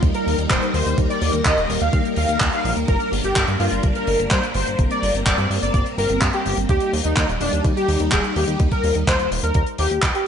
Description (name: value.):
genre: italo disco.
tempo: 126 BPM.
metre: 4/4.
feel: straight.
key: unclear.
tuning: A4 = 436 Hz.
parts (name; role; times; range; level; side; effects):
string machine, full ensemble; sustained chords; 0.0-10.3 s; G3 to Bb4; -25 LUFS; equal; phaser, ensemble chorus.
chorused synth bass; bass; 0.0-10.1 s; Eb1 to G2; -23 LUFS; equal; none.
electronic kick drum; drums; 0.0-10.1 s; none; -21 LUFS; equal; none.
tight funk drum kit; drums; 0.0-10.2 s; handclaps, hi-hat; -24 LUFS; equal; gated reverb.
wide unison lead; melody; 0.1-10.3 s; D4 to F5; -23 LUFS; left 1 dB; ensemble chorus, tape echo.
room: light reverb, small room ambience.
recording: nothing above 10.8 kHz.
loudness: -17 LUFS.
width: side -8 dB against mid.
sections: 0.0-10.3 A section.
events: none.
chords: 0.0 Eb; 2.9 Gm; 6.7 Eb.